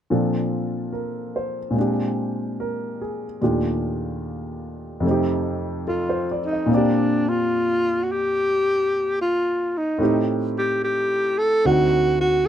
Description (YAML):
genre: jazz ballad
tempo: 73 BPM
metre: 4/4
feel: swing 68% on 8ths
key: Bb major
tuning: A4 = 441 Hz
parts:
  - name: warm grand piano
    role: accompaniment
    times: 0.1-12.5 s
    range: D2 to F#5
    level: -23 LUFS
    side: equal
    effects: none
  - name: breathy alto saxophone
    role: melody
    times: 5.9-12.5 s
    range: D4 to A4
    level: -20 LUFS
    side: equal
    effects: none
room: light reverb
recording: close, detailed microphones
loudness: -20 LUFS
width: side -10 dB against mid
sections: 0.1-6.7 A section; 6.7-12.5 B section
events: none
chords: 0.1 Bbmaj9; 1.8 Bb13; 3.4 Ebmaj9#11; 5.0 F9; 6.7 Bb6; 10.0 Am7b5; 11.6 D7b9